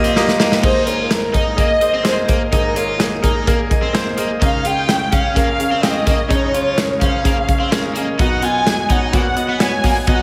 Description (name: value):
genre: piano-driven pop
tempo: 127 BPM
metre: 4/4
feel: straight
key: unclear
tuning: A4 = 440 Hz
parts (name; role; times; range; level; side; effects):
- dark studio violin section; melody; 0.0-10.2 s; Bb4 to Ab5; -22 LUFS; equal; slapback echo
- clear concert grand piano; accompaniment; 0.0-10.2 s; Ab1 to Bb5; -22 LUFS; equal; slapback echo
- cranked stack guitar; riff; 0.0-10.2 s; Bb3 to F4; -27 LUFS; equal; overdrive
- modern studio drum kit; drums; 0.0-10.2 s; crash cymbal, hi-hat, kick drum, snare drum; -20 LUFS; equal; none
room: wet lush hall reverb, RT60 1.9 s, studio ambience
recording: big arena sound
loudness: -17 LUFS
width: mono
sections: 0.6-10.2 A section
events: grand piano fill 0.0-0.6; drum fill 0.2-0.6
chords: 0.0 Ebadd9; 0.6 Absus2; 4.4 Db; 8.2 B